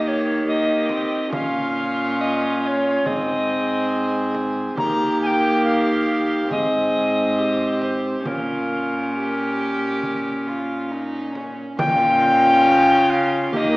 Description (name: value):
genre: classical, renaissance-style consort dance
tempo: 69 BPM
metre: 4/4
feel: straight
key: Bb dorian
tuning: A4 = 440 Hz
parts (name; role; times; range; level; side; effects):
- tenor recorder; melody; 0.0-13.8 s; Bb4 to Bb5; -21 LUFS; left 1 dB; none
- dark violin; second line; 0.0-13.8 s; Db4 to Ab4; -26 LUFS; right 1 dB; none
- warm viola; accompaniment; 0.0-13.8 s; Bb3 to Db4; -24 LUFS; equal; none
- rich cello; bass; 0.0-13.8 s; Ab2 to Eb3; -26 LUFS; equal; none
- frame drum; percussion; 0.9-13.8 s; none; -32 LUFS; right 1 dB; none
room: wet recital hall reverb, RT60 1.3 s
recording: small speaker sound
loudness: -18 LUFS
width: side -21 dB against mid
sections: 0.0-11.8 A section; 11.8-13.8 A section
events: none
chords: 0.0 Eb; 1.3 Bbm; 3.1 Ab; 4.8 Eb; 6.5 Ab; 8.3 Bbm